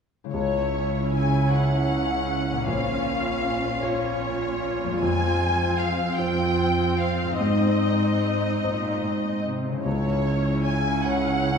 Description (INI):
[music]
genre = cinematic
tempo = 50 BPM (dotted quarters)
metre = 6/8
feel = uneven beats, rubato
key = unclear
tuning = A4 = 440 Hz
[part]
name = concert harp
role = arpeggios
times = 0.2-11.6 s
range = F2 to C#5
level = -30 LUFS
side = left 4 dB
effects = none
[part]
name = muted symphonic violin section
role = melody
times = 0.3-11.6 s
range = C#5 to G#5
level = -28 LUFS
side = left 2 dB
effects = none
[part]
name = clear concert grand piano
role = accompaniment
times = 0.3-11.6 s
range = A#1 to C#5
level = -28 LUFS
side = equal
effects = none
[part]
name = muted studio viola section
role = accompaniment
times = 0.3-11.6 s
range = C4 to E#4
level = -29 LUFS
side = right 2 dB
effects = none
[part]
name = muted studio cello section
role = bass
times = 0.3-11.6 s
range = F2 to C#3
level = -28 LUFS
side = right 3 dB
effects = none
[sound]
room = wet recital hall reverb, RT60 1.8 s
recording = recorded in a church or concert hall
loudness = -22 LUFS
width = side -6 dB against mid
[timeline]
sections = 0.3-11.6 A section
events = none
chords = 0.3 C#m; 2.7 A#m; 5.0 Fm; 7.4 G#; 9.9 C#m